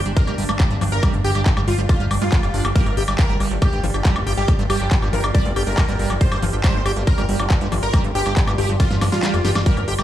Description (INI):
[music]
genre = psychedelic trance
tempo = 139 BPM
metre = 4/4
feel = straight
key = G minor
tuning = A4 = 442 Hz
[part]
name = overtone-sweeping drone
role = sustained chords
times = 0.0-10.0 s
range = G3 to F4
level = -30 LUFS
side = right 1 dB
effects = chorus, built-in reverb, sidechain pumping
[part]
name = fat analog bass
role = bass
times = 0.0-10.0 s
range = F1 to G2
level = -22 LUFS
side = equal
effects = tube saturation
[part]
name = granular cloud pad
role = texture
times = 0.0-10.0 s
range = G4 to C6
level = -32 LUFS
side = equal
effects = built-in reverb, sidechain pumping
[part]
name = liquid acid bass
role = riff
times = 0.1-10.0 s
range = F3 to G4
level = -26 LUFS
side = right 1 dB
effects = chorus, auto-pan, sidechain pumping, tape echo
[part]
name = big-room dance drum kit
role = drums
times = 0.1-10.0 s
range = handclaps, hi-hat, snare drum, woodblock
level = -26 LUFS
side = left 1 dB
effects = small room ambience
[part]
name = supersaw stab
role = melody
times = 0.2-9.8 s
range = F4 to D5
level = -27 LUFS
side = equal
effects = phaser, sidechain pumping, tape echo
[part]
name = electronic kick drum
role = drums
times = 0.2-9.7 s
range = none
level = -18 LUFS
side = equal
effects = small room ambience
[sound]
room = digital ambience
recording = played on a big sound system in a bare room, stone room reverb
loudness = -16 LUFS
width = side -12 dB against mid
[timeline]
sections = 0.0-10.0 A section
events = drum fill 8.8-9.7; kick drops out 9.2-9.7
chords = 0.0 G5